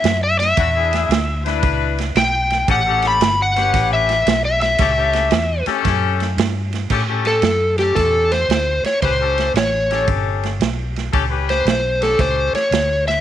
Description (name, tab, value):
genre	electric blues shuffle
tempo	114 BPM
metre	4/4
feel	swing 66% on 8ths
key	A mixolydian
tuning	A4 = 440 Hz
part	overdriven slide guitar	melody	0.0-13.2 s	G4 to B5	-17 LUFS	left 1 dB	none
part	vintage muted fingered electric bass	bass	0.0-13.2 s	G1 to A2	-22 LUFS	equal	none
part	crunchy breakbeat drum kit	drums	0.0-13.2 s	crash cymbal, kick drum, ride cymbal, snare drum	-22 LUFS	right 6 dB	none
part	warm horn section	stabs	0.6-12.6 s	C#4 to B4	-23 LUFS	left 11 dB	slapback echo
room	light reverb, small room reverb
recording	1960s-style stereo with parts hard left and right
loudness	-15 LUFS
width	side -11 dB against mid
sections	0.0-6.9 A section; 6.9-13.2 B section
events	electric slide guitar solo 0.0-6.9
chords	0.0 E7; 2.7 A7